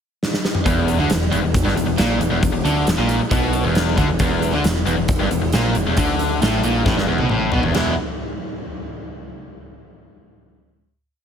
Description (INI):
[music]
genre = classic rock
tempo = 136 BPM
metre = 4/4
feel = straight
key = unclear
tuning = A4 = 440 Hz
[part]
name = huge arena drum kit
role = drums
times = 0.2-7.9 s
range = crash cymbal, hi-hat, kick drum, snare drum, toms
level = -21 LUFS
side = equal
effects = none
[part]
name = crunchy overdriven guitar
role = riff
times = 0.7-7.9 s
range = E2 to E4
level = -22 LUFS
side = right 8 dB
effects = none
[part]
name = tight distorted guitar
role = riff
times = 0.7-7.9 s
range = E2 to E4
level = -22 LUFS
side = left 10 dB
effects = distortion
[part]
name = growling picked electric bass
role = bass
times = 0.7-8.0 s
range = E1 to D2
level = -23 LUFS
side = equal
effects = overdrive
[sound]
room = small room ambience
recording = none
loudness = -16 LUFS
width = side -8 dB against mid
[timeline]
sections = 0.0-0.7 pickup bar; 0.7-7.7 riff; 7.7-9.5 final chord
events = drum fill 0.2-0.7, 6.9-7.7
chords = 0.0 N.C.; 0.7 E5; 7.7 E